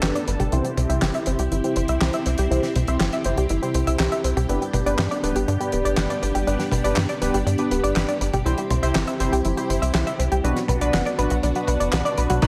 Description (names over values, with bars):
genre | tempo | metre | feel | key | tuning
italo disco | 121 BPM | 4/4 | straight | unclear | A4 = 440 Hz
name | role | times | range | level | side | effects
string machine, full ensemble | sustained chords | 0.0-12.5 s | B3 to A4 | -30 LUFS | equal | ensemble chorus
analog pluck | arpeggios | 0.0-12.5 s | D4 to G5 | -29 LUFS | equal | chorus, delay
chorused polysynth | stabs | 0.0-12.5 s | G2 to D5 | -30 LUFS | equal | delay
tight sequencer bass | bass | 0.0-12.5 s | D1 to G2 | -26 LUFS | equal | none
damped 70s drum kit | drums | 0.0-12.5 s | crash cymbal, handclaps, hi-hat, snare drum, toms | -29 LUFS | equal | gated reverb
electronic kick drum | drums | 12.4-12.5 s | none | -20 LUFS | equal | none
room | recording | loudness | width
light reverb, small room ambience | none | -22 LUFS | mono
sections
0.0-12.4 A section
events
filter sweep on synth arpeggio sound 0.0-12.4; filter sweep on analog polysynth 0.0-12.4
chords
0.0 G; 0.5 C; 4.5 G; 8.5 C; 10.4 Bm